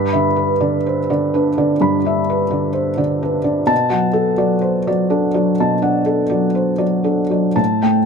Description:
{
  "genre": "neoclassical minimalist piano",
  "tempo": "62 BPM",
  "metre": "4/4",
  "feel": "rubato",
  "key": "unclear",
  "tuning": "A4 = 440 Hz",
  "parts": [
    { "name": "felt-muted upright piano", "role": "solo", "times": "0.0-8.1 s", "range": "G2 to B5", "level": "-14 LUFS", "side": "equal", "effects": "none" }
  ],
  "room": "light reverb",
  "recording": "close, detailed microphones",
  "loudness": "-15 LUFS",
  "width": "side -6 dB against mid",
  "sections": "0.0-8.1 A section",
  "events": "none",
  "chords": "0.0 Em7/G; 3.7 Bm7",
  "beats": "0.84 1.80 2.76 | 3.71 4.66 5.60 6.58 | 7.58"
}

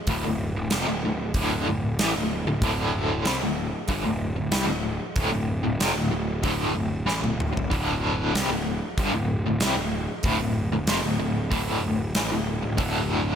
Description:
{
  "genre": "hard rock",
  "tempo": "94 BPM",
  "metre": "4/4",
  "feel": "straight",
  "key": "D minor",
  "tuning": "A4 = 440 Hz",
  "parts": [
    { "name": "overdriven electric guitar", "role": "riff", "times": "0.1-13.4 s", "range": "D2 to G3", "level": "-26 LUFS", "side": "left 1 dB", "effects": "tremolo" },
    { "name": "fuzz picked electric bass", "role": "bass", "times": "0.1-13.4 s", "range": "D1 to C2", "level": "-29 LUFS", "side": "equal", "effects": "overdrive" },
    { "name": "huge arena drum kit", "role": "drums", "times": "0.1-12.9 s", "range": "hi-hat, kick drum, snare drum, toms", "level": "-28 LUFS", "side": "right 1 dB", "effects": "none" }
  ],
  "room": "studio ambience",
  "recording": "none",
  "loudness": "-23 LUFS",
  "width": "side -8 dB against mid",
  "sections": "0.0-13.4 A section",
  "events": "drum fill 7.1-7.7",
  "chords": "0.0 D5",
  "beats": "| 0.08 0.72 1.35 1.99 | 2.62 3.26 3.89 4.53 | 5.16 5.80 6.43 7.07 | 7.71 8.34 8.97 9.61 | 10.24 10.88 11.52 12.15 | 12.78"
}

